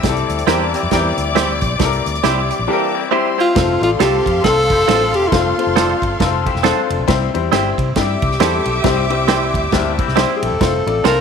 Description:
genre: uptempo 1960s-style soul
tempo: 136 BPM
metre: 4/4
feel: swing 59% on 8ths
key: F major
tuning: A4 = 440 Hz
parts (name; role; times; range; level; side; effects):
- rich symphonic string section; second line; 0.0-10.6 s; G4 to D6; -22 LUFS; left 2 dB; none
- bright upright piano; accompaniment; 0.0-11.2 s; G3 to D5; -20 LUFS; left 11 dB; none
- electric guitar through a small old amp; riff; 0.0-7.1, 9.7-10.6 s; Bb3 to A4; -25 LUFS; left 11 dB; lush chorus
- vintage muted fingered electric bass; bass; 0.0-11.2 s; E1 to C3; -22 LUFS; equal; none
- natural country drum kit; drums; 0.0-11.2 s; hi-hat, kick drum, ride cymbal, snare drum; -20 LUFS; right 4 dB; none
- mellow horn section; second line; 0.5-3.0 s; E3 to G4; -24 LUFS; right 10 dB; none
- direct-recorded clean electric guitar; stabs; 0.5-11.2 s; C4 to C5; -22 LUFS; right 13 dB; spring reverb
- warm tenor saxophone; melody; 3.4-6.2, 10.4-11.2 s; E4 to Bb4; -16 LUFS; equal; none
room: light reverb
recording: 1960s-style stereo with parts hard left and right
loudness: -13 LUFS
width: side -6 dB against mid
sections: 0.0-3.6 A section; 3.6-11.2 B section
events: none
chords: 0.0 C; 3.6 F; 7.1 C; 10.6 F

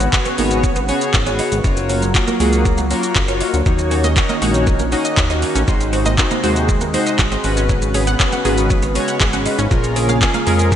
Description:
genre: dance-pop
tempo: 119 BPM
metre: 4/4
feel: straight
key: unclear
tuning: A4 = 440 Hz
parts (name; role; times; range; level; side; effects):
- lush unison pad; sustained chords; 0.0-10.8 s; C3 to Ab4; -24 LUFS; equal; chorus, sidechain pumping
- twelve-string electric guitar; riff; 0.0-10.8 s; Ab3 to Eb4; -26 LUFS; right 6 dB; analog chorus, slapback echo
- chorused synth bass; bass; 0.0-10.8 s; Gb1 to F2; -19 LUFS; equal; sidechain pumping
- smooth R&B drum kit; drums; 0.0-10.8 s; handclaps, hi-hat, kick drum, shaker; -18 LUFS; equal; none
- chorused polysynth; accompaniment; 0.1-10.8 s; Ab3 to Eb5; -20 LUFS; left 1 dB; sidechain pumping
- wide unison pluck; arpeggios; 3.7-10.8 s; Eb3 to Gb5; -25 LUFS; equal; sidechain pumping, tape echo
room: moderate lush hall reverb, RT60 1.9 s, digital ambience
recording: big arena sound, nothing above 10.9 kHz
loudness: -14 LUFS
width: side -10 dB against mid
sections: 0.0-10.8 A section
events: none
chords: 0.0 Db7sus4/Ab; 1.6 Gbmaj7; 3.7 Ebm7; 5.7 Ab7; 7.4 Db7sus4/Ab; 9.7 Bbm7

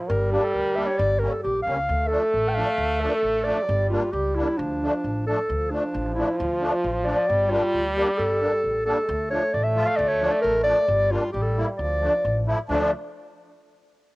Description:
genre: klezmer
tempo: 133 BPM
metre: 2/4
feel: straight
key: D harmonic minor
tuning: A4 = 440 Hz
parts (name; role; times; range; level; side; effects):
- warm trombone; second line; 0.0-12.9 s; F3 to A3; -28 LUFS; right 1 dB; cassette tape, plate reverb
- mellow clarinet; melody; 0.1-12.9 s; D4 to G5; -23 LUFS; equal; cassette tape, plate reverb
- upright bass; bass; 0.1-12.9 s; G1 to D2; -28 LUFS; equal; none
- musette accordion; accompaniment; 0.3-12.9 s; F3 to F4; -28 LUFS; equal; cassette tape, plate reverb
room: wet booth ambience, RT60 0.2 s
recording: home recording on cassette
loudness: -21 LUFS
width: side -21 dB against mid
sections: 0.0-5.5 A section; 5.5-12.7 A section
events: none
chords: 0.1 Gm; 1.9 Dm; 3.7 Gm; 4.6 Dm; 7.3 Gm; 9.1 Dm; 10.9 Gm; 11.8 Dm

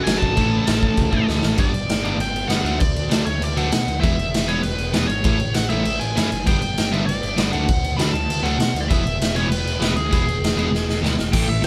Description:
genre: punk rock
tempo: 197 BPM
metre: 4/4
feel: straight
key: unclear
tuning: A4 = 442 Hz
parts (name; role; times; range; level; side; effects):
- biting lead guitar; melody; 0.0-11.7 s; G#4 to B5; -28 LUFS; equal; overdrive
- crunchy overdriven guitar; riff; 0.0-11.7 s; G2 to A4; -26 LUFS; equal; none
- sludgy distorted guitar; riff; 0.0-11.7 s; E2 to D4; -30 LUFS; equal; none
- growling picked electric bass; bass; 0.1-11.7 s; E1 to B2; -28 LUFS; equal; overdrive
- raw garage drum kit; drums; 0.1-11.7 s; crash cymbal, hi-hat, kick drum, snare drum; -24 LUFS; equal; none
room: light reverb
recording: band playing live in one room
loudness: -20 LUFS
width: mono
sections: 0.0-1.6 A section; 1.6-11.3 B section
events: drum fill 1.3-1.6, 10.7-11.3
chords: 0.4 A; 1.6 G; 2.7 D; 4.0 E; 5.2 A; 6.5 G; 7.5 D; 8.9 E

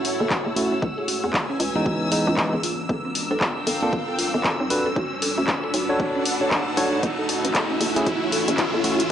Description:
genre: deep house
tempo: 116 BPM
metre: 4/4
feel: swing 61% on 16ths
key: F# minor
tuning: A4 = 440 Hz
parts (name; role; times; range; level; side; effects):
- deep dark ambient pad; sustained chords; 0.0-9.1 s; E3 to C#5; -32 LUFS; right 1 dB; chorus, built-in reverb, sidechain pumping
- hollow knocking FM bass; bass; 0.0-9.0 s; F#1 to E2; -26 LUFS; equal; transformer saturation, sidechain pumping, high-pass filter
- deep house drum kit; drums; 0.0-9.1 s; handclaps, hi-hat; -25 LUFS; left 1 dB; none
- riser; sound effects; 0.1-9.1 s; none; -30 LUFS; equal; none
- dark studio string section; texture; 0.0-9.1 s; C#4 to E6; -31 LUFS; equal; sidechain pumping
- string machine, violins; texture; 0.0-9.1 s; E6; -32 LUFS; left 1 dB; ensemble chorus, sidechain pumping
- mallet-like synth pluck; arpeggios; 0.2-8.9 s; B#3 to F#5; -30 LUFS; right 2 dB; chorus, sidechain pumping, tape echo
- electronic kick drum; drums; 0.3-8.7 s; none; -28 LUFS; equal; high-pass filter on kick, high-pass filter on room
- bright tine electric piano; stabs; 0.6-9.0 s; E3 to C#5; -26 LUFS; equal; vintage 12-bit sampler grit, sidechain pumping, tape echo
room: light reverb, digital ambience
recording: dry, gritty hardware recording, cassette tape, nothing above 10.5 kHz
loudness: -20 LUFS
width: side -10 dB against mid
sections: 0.0-9.1 A section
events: build-up 0.0-9.1; riser 0.1-9.1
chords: 0.0 F#m7; 0.8 C#m7; 2.6 Gm7; 4.7 Bm7; 7.0 F#m7

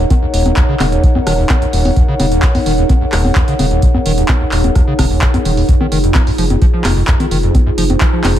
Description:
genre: acid house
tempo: 129 BPM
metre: 4/4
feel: straight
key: unclear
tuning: A4 = 439 Hz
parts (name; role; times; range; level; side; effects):
- dark analog pad; sustained chords; 0.0-8.4 s; Eb4 to Gb5; -22 LUFS; equal; chorus, sidechain pumping
- overdriven acid bass; riff; 0.0-8.4 s; Eb2 to F3; -18 LUFS; equal; tube saturation, wide subtle chorus, sidechain pumping
- saturated sub bass; bass; 0.0-8.4 s; Eb1 to F1; -17 LUFS; equal; sidechain pumping
- warbly tape-like pad; texture; 0.0-8.4 s; Eb4 to Db5; -20 LUFS; equal; chorus, built-in reverb, sidechain pumping
- electronic kick drum; drums; 0.1-8.1 s; none; -13 LUFS; equal; none
- punchy analog drum machine; drums; 0.1-8.4 s; congas, handclaps, hi-hat, rim click; -19 LUFS; left 1 dB; none
room: digital ambience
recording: none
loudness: -10 LUFS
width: side -11 dB against mid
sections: 0.0-8.4 A section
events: none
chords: 0.0 Ebm7; 5.7 Fm7

